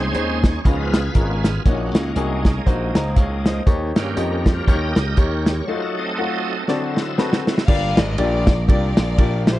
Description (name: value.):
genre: uptempo gospel.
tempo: 119 BPM.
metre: 4/4.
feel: swing 58% on 8ths.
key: unclear.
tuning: A4 = 440 Hz.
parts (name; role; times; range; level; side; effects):
clear upright piano; accompaniment; 0.0-9.5 s; G2 to Bb5; -25 LUFS; left 3 dB; none.
bright tonewheel organ; sustained chords; 0.0-7.6 s; F3 to Eb5; -26 LUFS; right 2 dB; fast rotary speaker, overdrive, chorus vibrato.
glassy slap bass; bass; 0.0-9.6 s; G1 to G2; -22 LUFS; equal; none.
warm soul drum kit; drums; 0.1-9.6 s; crash cymbal, hi-hat, kick drum, ride cymbal, snare drum; -18 LUFS; equal; none.
warm studio string section; melody; 7.7-9.6 s; E4 to F5; -25 LUFS; left 2 dB; none.
room: light reverb, small room ambience.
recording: dark, warm production, nothing above 10.6 kHz.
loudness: -17 LUFS.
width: side -16 dB against mid.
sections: 0.0-7.7 A section; 7.7-9.6 B section.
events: tonewheel organ solo 0.0-7.7; upright piano fill 2.7-3.7; break 5.7-7.7; drum fill 6.7-7.7.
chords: 0.0 Bbm11; 0.6 Db7; 1.7 Gb6/Bb; 3.7 Eb7; 5.7 F7b9; 6.7 D7; 7.7 Gm7.